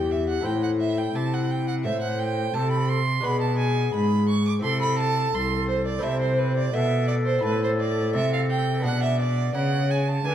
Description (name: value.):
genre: classical, baroque-style sonata movement with continuo.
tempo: 86 BPM.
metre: 4/4.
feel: straight.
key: A minor from 6.0 s.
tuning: A4 = 439 Hz.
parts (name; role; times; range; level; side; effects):
baroque flute; melody; 0.0-10.3 s; E4 to D5; -29 LUFS; left 6 dB; none.
rich violin; second line; 0.0-10.3 s; B4 to D6; -27 LUFS; right 4 dB; none.
lute; accompaniment; 0.0-10.3 s; E2 to C5; -33 LUFS; equal; none.
clear cello; bass; 0.0-10.3 s; C2 to D3; -24 LUFS; right 1 dB; none.
room: moderate recital hall reverb, RT60 1.6 s.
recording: dark, warm production.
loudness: -21 LUFS.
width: side -10 dB against mid.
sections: 0.0-10.3 A section.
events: none.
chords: 0.5 Am; 3.2 G#dim/B; 4.6 Am/C; 7.4 Am; 8.8 G#dim/B.